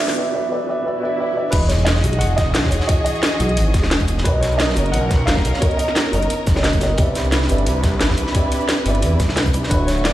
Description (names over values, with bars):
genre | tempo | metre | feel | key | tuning
liquid drum and bass | 176 BPM | 4/4 | swing 53% on 16ths | E lydian | A4 = 440 Hz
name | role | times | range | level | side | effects
felt-muted upright piano | accompaniment | 0.0-10.1 s | D3 to E5 | -23 LUFS | right 1 dB | ping-pong delay
dark studio string section | sustained chords | 0.0-10.1 s | D3 to C#6 | -27 LUFS | equal | none
riser, swell and impact | sound effects | 0.0-2.9 s | none | -30 LUFS | equal | none
drum and bass drum kit | drums | 0.1-10.1 s | crash cymbal, hi-hat, shaker, snare drum | -23 LUFS | equal | none
warm baby grand piano | melody | 1.5-6.1, 9.7-10.1 s | B4 to F#5 | -25 LUFS | right 1 dB | ping-pong delay
swelling detuned saw bass | bass | 1.5-10.1 s | D1 to E2 | -19 LUFS | equal | none
crunchy breakbeat drum kit | drums | 1.5-10.1 s | hi-hat, snare drum | -27 LUFS | equal | high-pass filter on hats, high-pass filter on snare, high-pass filter on room
electronic kick drum | drums | 1.5-9.8 s | none | -18 LUFS | equal | none
room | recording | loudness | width
light reverb, small room ambience | played on a big sound system in a bare room, large studio reverb | -16 LUFS | side -14 dB against mid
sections
0.0-1.5 A section; 1.5-10.1 B section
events
build-up 0.0-1.5; drum fill 0.0; riser 0.0; break 0.2-1.5; swell 0.9-1.5; drop 1.5-10.1; impact 1.5-2.9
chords
0.0 Dadd9; 1.5 Emaj9; 4.3 Bmaj9; 7.0 Cmaj9